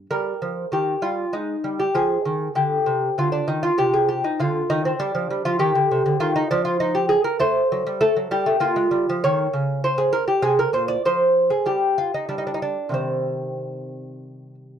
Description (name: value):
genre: classical, baroque-style dance for lute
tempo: 98 BPM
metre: 3/4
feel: rubato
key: C minor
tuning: A4 = 440 Hz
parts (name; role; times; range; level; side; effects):
- lute; solo; 0.0-14.8 s; Bb2 to D5; -19 LUFS; equal; none
room: studio ambience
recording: dry, close 1970s-style studio recording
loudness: -19 LUFS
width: side -8 dB against mid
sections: 0.1-14.8 A section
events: none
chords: 0.1 Eb; 1.3 Ab5; 1.9 Fm; 5.0 G5; 5.6 Cm (rootless); 7.4 F#dim; 8.6 Gm; 9.2 Dbsus2; 10.4 Bb9; 11.1 N.C.; 13.0 Cm